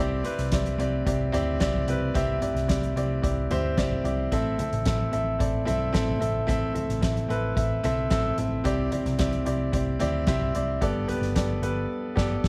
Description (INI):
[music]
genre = piano-driven pop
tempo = 111 BPM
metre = 4/4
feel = straight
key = C major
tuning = A4 = 441 Hz
[part]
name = warm concert grand piano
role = accompaniment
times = 0.0-12.5 s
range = G2 to A5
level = -29 LUFS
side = equal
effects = none
[part]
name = vintage muted picked electric bass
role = bass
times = 0.0-12.5 s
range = G1 to D2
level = -31 LUFS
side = equal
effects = none
[part]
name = soft-mallet drum kit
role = drums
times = 0.2-12.5 s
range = crash cymbal, hi-hat, kick drum, snare drum, toms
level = -32 LUFS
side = equal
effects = none
[sound]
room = small room ambience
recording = none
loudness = -26 LUFS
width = mono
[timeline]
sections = 0.0-12.5 A section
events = grand piano fill 7.8-8.7; band accent 11.9-12.5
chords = 0.0 Cadd9; 4.3 Am; 8.7 Cadd9; 10.8 Gadd9